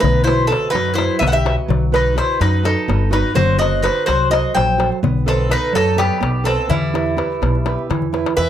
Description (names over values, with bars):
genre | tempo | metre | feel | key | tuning
greek folk, Greek bouzouki band | 252 BPM (eighths) | 7/8 | straight | E harmonic minor | A4 = 441 Hz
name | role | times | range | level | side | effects
Greek bouzouki | melody | 0.0-8.5 s | E4 to G5 | -19 LUFS | left 1 dB | none
bowl-back mandolin | second line | 0.0-8.5 s | G3 to E5 | -24 LUFS | left 1 dB | none
picked old ladder-braced acoustic guitar | accompaniment | 0.0-8.5 s | B2 to D#5 | -22 LUFS | right 8 dB | none
upright bass | bass | 0.0-8.5 s | F#1 to F#2 | -20 LUFS | equal | none
darbuka | percussion | 0.0-8.4 s | none | -23 LUFS | left 7 dB | none
room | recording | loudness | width
light reverb | dry, close 1970s-style studio recording | -14 LUFS | side -10 dB against mid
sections
0.0-8.4 A section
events
drum fill 8.0-8.4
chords
0.0 B; 3.4 F#dim; 5.0 B7; 6.7 Em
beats
| 0.03 0.27 0.51 0.74 0.98 1.22 1.46 | 1.69 1.93 2.17 2.41 2.65 2.88 3.12 | 3.36 3.60 3.84 4.08 4.32 4.55 4.79 | 5.03 5.27 5.51 5.75 5.99 6.22 6.46 | 6.70 6.94 7.18 7.42 7.66 7.90 8.14 | 8.38